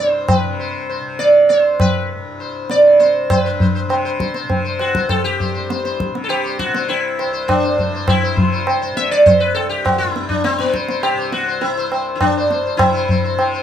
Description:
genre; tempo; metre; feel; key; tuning
indian classical, Hindustani; 101 BPM; 4/4; straight; C raga yaman; A4 = 440 Hz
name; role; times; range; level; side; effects
sitar; melody; 0.0-13.6 s; B3 to E5; -16 LUFS; right 1 dB; none
tanpura; drone; 0.0-13.6 s; C2 to C3; -27 LUFS; left 2 dB; none
tabla; percussion; 0.3-13.6 s; none; -18 LUFS; equal; none
room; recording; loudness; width
light reverb; close, detailed microphones; -14 LUFS; side -9 dB against mid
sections
0.0-3.3 A section; 3.3-13.6 B section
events
speeding up 0.0-13.6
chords
none

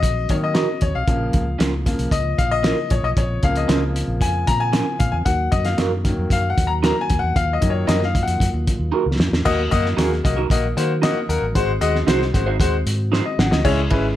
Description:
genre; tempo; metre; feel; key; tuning
uptempo 1960s-style soul; 114 BPM; 4/4; straight; unclear; A4 = 441 Hz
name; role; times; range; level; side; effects
clear grand piano; accompaniment; 0.0-14.1 s; Db3 to Bb5; -22 LUFS; left 4 dB; none
percussive tonewheel organ; sustained chords; 0.0-14.2 s; Db3 to G#4; -30 LUFS; right 1 dB; slow rotary speaker
vintage muted fingered electric bass; bass; 0.0-14.2 s; Ab1 to Eb3; -23 LUFS; equal; none
cloth-damped thuddy drum kit; drums; 0.0-14.0 s; crash cymbal, hi-hat, kick drum, ride cymbal, snare drum; -21 LUFS; equal; none
electric guitar through a small old amp; stabs; 0.5-13.2 s; Db4 to C5; -24 LUFS; right 6 dB; phaser
room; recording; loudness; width
light reverb, studio reverb; none; -17 LUFS; side -13 dB against mid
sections
0.0-9.5 A section; 9.5-13.7 B section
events
grand piano solo 0.0-9.5; drum fill 8.9-9.5, 13.1-13.7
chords
0.0 Ebm; 1.1 Bbm; 5.3 Ebm; 11.6 Ab7; 13.7 C#m

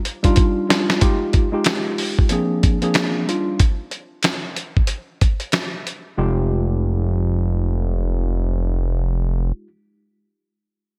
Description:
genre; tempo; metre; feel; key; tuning
hip hop, boom-bap hip-hop; 93 BPM; 4/4; swing 60% on 16ths; F dorian; A4 = 439 Hz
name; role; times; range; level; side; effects
dusty soul sampler-style drum kit; drums; 0.1-6.0 s; hi-hat, kick drum, snare drum; -20 LUFS; equal; gated reverb
mellow tine electric piano; accompaniment; 0.2-9.7 s; F3 to Ab4; -25 LUFS; equal; cassette tape, high-pass filter, low-pass filter
fat analog bass; bass; 6.2-9.5 s; F1; -21 LUFS; equal; none
room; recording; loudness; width
light reverb; bright 1980s-style digital production; -20 LUFS; mono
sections
0.0-1.0 A section; 1.0-6.2 B section; 6.2-8.8 C section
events
drum fill 0.0-1.0; break 3.6-6.2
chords
0.0 Ebmaj9; 1.0 Fm9; 2.3 Bb9/F; 3.3 Ebmaj9; 6.2 Fm9

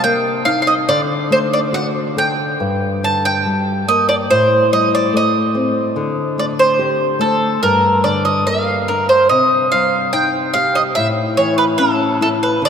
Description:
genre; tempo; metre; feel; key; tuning
fado; 72 BPM; 2/4; rubato; G minor; A4 = 440 Hz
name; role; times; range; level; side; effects
bowl-back mandolin; melody; 0.0-12.7 s; A4 to A5; -14 LUFS; right 1 dB; none
nylon-string guitar; accompaniment; 0.0-12.7 s; G2 to A4; -19 LUFS; left 2 dB; none
room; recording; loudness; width
wet cathedral reverb, RT60 5.9 s; in a vast, echoing space; -13 LUFS; side -7 dB against mid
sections
0.0-12.7 A section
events
none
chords
0.0 Cm7; 0.9 D; 2.6 Gm; 4.3 Am7b5; 6.0 Dsus4; 7.6 Gm; 9.3 Cm; 11.0 A

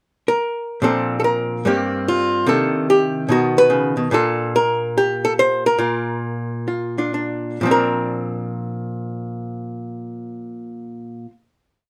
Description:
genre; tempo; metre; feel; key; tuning
solo jazz; 124-146 BPM; 4/4; swing 65% on 8ths; Bb major; A4 = 444 Hz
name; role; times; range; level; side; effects
archtop guitar, miked and amplified; solo; 0.3-11.3 s; G2 to C5; -20 LUFS; equal; none
room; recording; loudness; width
light reverb; none; -20 LUFS; mono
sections
0.0-0.8 pickup bar; 0.8-7.6 A section; 7.6-11.5 final chord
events
slowing down 4.1-7.6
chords
0.0 N.C.; 0.8 Bbmaj9; 1.6 Gm7; 2.5 Cm9; 3.3 B; 4.1 Bbmaj7; 7.6 Bbadd9

